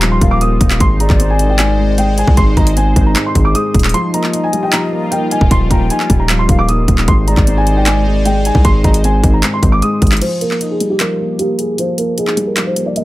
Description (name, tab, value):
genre	hip hop, trap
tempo	153 BPM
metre	4/4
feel	half-time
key	Eb major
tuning	A4 = 439 Hz
part	felt-muted upright piano	melody	0.0-13.0 s	G4 to Eb6	-19 LUFS	equal	low-pass filter, dub echo
part	dark concert grand piano	accompaniment	0.0-13.0 s	Ab2 to Eb4	-18 LUFS	left 1 dB	low-pass filter
part	sweeping resonant pad	sustained chords	0.0-10.2 s	G3 to C5	-25 LUFS	equal	chorus
part	distorted 808-style bass	bass	0.0-10.2 s	Eb1 to C2	-14 LUFS	equal	distortion
part	trap drum kit	drums	0.0-13.0 s	crash cymbal, handclaps, hi-hat, kick drum	-14 LUFS	equal	overdrive
part	concert flute	second line	0.2-9.0 s	D5 to G5	-25 LUFS	left 4 dB	dub echo
room	small room ambience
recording	echo-heavy mix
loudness	-11 LUFS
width	side -17 dB against mid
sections	0.0-10.2 A section; 10.2-13.0 B section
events	break 3.9-4.3, 10.2-13.0; filter sweep 10.2-13.0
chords	0.0 Ebadd9; 0.8 Ab; 3.9 Ebadd9; 7.1 Ab; 10.2 Ebadd9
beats	0.02 0.41 | 0.80 1.20 1.59 1.98 | 2.37 2.77 3.16 3.55 | 3.94 4.33 4.72 5.12 | 5.51 5.90 6.29 6.69 | 7.08 7.47 7.86 8.26 | 8.65 9.04 9.43 9.82 | 10.22 10.61 11.00 11.39 | 11.78 12.18 12.57 12.96